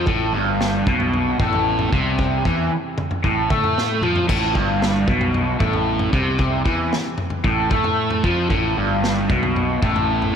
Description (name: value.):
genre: psychedelic rock.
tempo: 114 BPM.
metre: 4/4.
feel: straight.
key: A minor.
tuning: A4 = 440 Hz.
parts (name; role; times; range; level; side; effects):
raw garage guitar; riff; 0.0-10.3 s; G2 to A3; -19 LUFS; equal; overdrive, phaser.
fuzz fingered electric bass; bass; 0.0-10.3 s; G1 to A2; -24 LUFS; equal; overdrive.
vintage drum kit; drums; 0.1-10.3 s; crash cymbal, kick drum, snare drum, toms; -24 LUFS; equal; none.
room: moderate cathedral reverb, RT60 5.5 s.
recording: dreamy mix soaked in reverb.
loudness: -17 LUFS.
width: side -7 dB against mid.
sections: 0.0-10.4 A section.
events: drum fill 3.8-4.3.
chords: 0.0 Am.